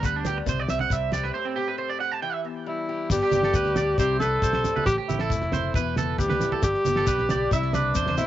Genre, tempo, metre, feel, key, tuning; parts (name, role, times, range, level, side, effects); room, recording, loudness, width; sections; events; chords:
highlife guitar band; 136 BPM; 4/4; straight; G major; A4 = 440 Hz
picked acoustic archtop guitar; accompaniment; 0.0-8.3 s; G2 to G4; -32 LUFS; left 9 dB; cassette tape
electric guitar at the edge of break-up; arpeggios; 0.0-8.3 s; C4 to A5; -29 LUFS; right 8 dB; cassette tape, tape echo
fingered electric bass; bass; 0.0-8.2 s; E1 to E2; -30 LUFS; equal
damped 70s drum kit; drums; 0.0-8.3 s; crash cymbal, kick drum, snare drum; -29 LUFS; equal; cassette tape
shekere; percussion; 0.0-8.3 s; -31 LUFS; left 4 dB
congas; percussion; 0.2-8.3 s; -32 LUFS; right 5 dB
breathy tenor saxophone; melody; 2.7-8.3 s; D4 to A4; -24 LUFS; equal
light reverb; home recording on cassette, nothing above 7.7 kHz; -22 LUFS; side -12 dB against mid
0.0-3.1 A section; 3.1-8.3 B section
clean electric guitar solo 0.0-3.1; break 1.3-3.1
0.5 C5; 1.3 Am7; 2.2 Em; 3.1 G; 4.0 C; 4.9 Am7; 5.8 Em; 6.6 G; 7.5 C